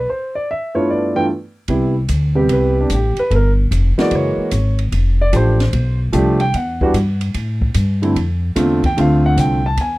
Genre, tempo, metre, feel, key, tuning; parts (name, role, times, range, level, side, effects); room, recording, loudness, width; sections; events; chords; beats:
jazz piano trio; 148 BPM; 4/4; swing 67% on 8ths; C major; A4 = 440 Hz
warm grand piano; melody; 0.0-10.0 s; G2 to A5; -17 LUFS; right 1 dB
upright bass; bass; 0.0-10.0 s; F1 to A2; -16 LUFS; equal
open jazz drum kit; drums; 1.7-9.9 s; hi-hat, kick drum, ride cymbal, snare drum; -25 LUFS; equal
little or no reverb; dry, close 1970s-style studio recording; -14 LUFS; side -19 dB against mid
0.0-1.7 A section; 1.7-10.0 B section
break 0.1-1.7
0.1 G13; 1.7 Cmaj7(no3); 3.3 Gm7; 4.1 F#9; 4.9 F69; 6.5 Emadd9; 7.3 A5; 8.2 Dm7
| 0.07 0.47 0.88 1.28 | 1.69 2.09 2.49 2.90 | 3.30 3.71 4.11 4.52 | 4.92 5.33 5.73 6.13 | 6.54 6.94 7.35 7.75 | 8.15 8.56 8.96 9.37 | 9.77